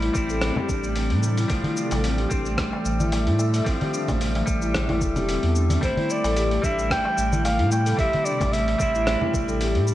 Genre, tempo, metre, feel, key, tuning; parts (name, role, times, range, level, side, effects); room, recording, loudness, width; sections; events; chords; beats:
organic downtempo; 111 BPM; 4/4; swing 54% on 16ths; A minor; A4 = 441 Hz
semi-hollow electric guitar; accompaniment; 0.0-9.9 s; F3 to E4; -30 LUFS; left 1 dB; vibrato effect, sidechain pumping, ping-pong delay
granular cloud pad; sustained chords; 0.0-9.9 s; C3 to E5; -32 LUFS; left 1 dB; built-in reverb, sidechain pumping
marimba with soft mallets; arpeggios; 0.0-9.9 s; E3 to A4; -27 LUFS; left 1 dB; ping-pong delay
warm sub bass; bass; 0.0-9.9 s; E1 to A2; -25 LUFS; equal; tube saturation, sidechain pumping
dusty soul sampler-style drum kit; drums; 0.0-9.9 s; congas, hi-hat, rim click, shaker; -30 LUFS; left 1 dB
electronic kick drum; drums; 0.2-9.5 s; -28 LUFS; equal
darbuka; percussion; 0.6-9.3 s; -31 LUFS; left 2 dB
mellow clarinet; melody; 5.8-9.9 s; C5 to G5; -25 LUFS; right 1 dB; ping-pong delay
moderate lush hall reverb, RT60 2.0 s; worn, warbling old tape, cassette tape, warbly pitch drift; -20 LUFS; side -14 dB against mid
0.0-9.9 A section
0.0 Am7; 1.5 Dmadd9/A; 5.8 Am7
0.42 0.96 | 1.50 2.04 2.58 3.12 | 3.67 4.21 4.75 5.29 | 5.83 6.37 6.91 7.45 | 7.99 8.53 9.07 9.61